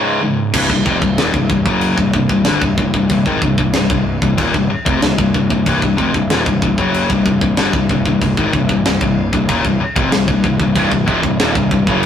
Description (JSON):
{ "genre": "heavy metal", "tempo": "94 BPM", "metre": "4/4", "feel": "straight", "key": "C minor", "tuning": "A4 = 440 Hz", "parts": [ { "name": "heavy high-gain guitar", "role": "riff", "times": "0.0-12.1 s", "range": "C2 to F#3", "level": "-15 LUFS", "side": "left 3 dB", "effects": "distortion" }, { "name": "tight distorted guitar", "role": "riff", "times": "0.0-0.5, 10.8-12.1 s", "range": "C2 to F#3", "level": "-20 LUFS", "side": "right 6 dB", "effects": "distortion" }, { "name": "fuzz picked electric bass", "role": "bass", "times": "0.5-12.1 s", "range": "C1 to Ab1", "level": "-20 LUFS", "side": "right 1 dB", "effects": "overdrive" }, { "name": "tight metal drum kit", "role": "drums", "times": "0.5-12.1 s", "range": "crash cymbal, kick drum, snare drum", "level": "-19 LUFS", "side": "right 1 dB", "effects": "none" } ], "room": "moderate studio reverb, RT60 0.5 s", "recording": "rough rehearsal-room recording, tube saturation", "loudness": "-13 LUFS", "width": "side -9 dB against mid", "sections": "0.5-12.1 A section", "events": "break 0.0-0.5", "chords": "0.0 Db5; 0.5 Cm" }